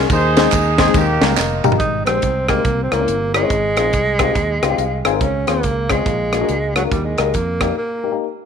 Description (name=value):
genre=uptempo gospel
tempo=141 BPM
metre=4/4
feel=swing 63% on 8ths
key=Ab major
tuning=A4 = 439 Hz
part: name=warm horn section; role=melody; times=0.0-1.8 s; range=Bb3 to C5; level=-18 LUFS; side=right 2 dB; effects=slapback echo
part: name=dark upright piano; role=accompaniment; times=0.0-8.2 s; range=Ab2 to Ab5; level=-21 LUFS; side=left 11 dB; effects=none
part: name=fingered electric bass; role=bass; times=0.0-7.7 s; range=F1 to F2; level=-22 LUFS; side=right 2 dB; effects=none
part: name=crisp fusion drum kit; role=drums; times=0.1-7.7 s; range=hi-hat, kick drum, ride cymbal, rim click, snare drum, toms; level=-19 LUFS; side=right 2 dB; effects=none
part: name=tambourine and handclaps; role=percussion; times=0.1-1.7 s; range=none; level=-27 LUFS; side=right 6 dB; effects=none
part: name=breathy tenor saxophone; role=melody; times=1.8-8.2 s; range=F#3 to Eb4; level=-20 LUFS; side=right 2 dB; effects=none
room=light reverb, small room ambience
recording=1960s-style stereo with parts hard left and right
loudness=-15 LUFS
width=side -7 dB against mid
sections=0.0-1.8 A section; 1.8-8.5 B section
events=drum fill 1.4-1.8; upright piano fill 4.6-5.2; break 7.8-8.5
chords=0.1 Ab/Eb; 0.9 Eb; 1.8 Abmaj7; 2.7 C7b9; 3.5 Fm7/Ab; 5.2 Dbmaj7; 6.1 Bb7alt; 6.9 Eb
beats=| 0.10 0.52 0.95 1.37 | 1.80 2.23 2.65 3.08 | 3.50 3.93 4.36 4.79 | 5.21 5.64 6.07 6.49 | 6.92 7.34 7.77 8.19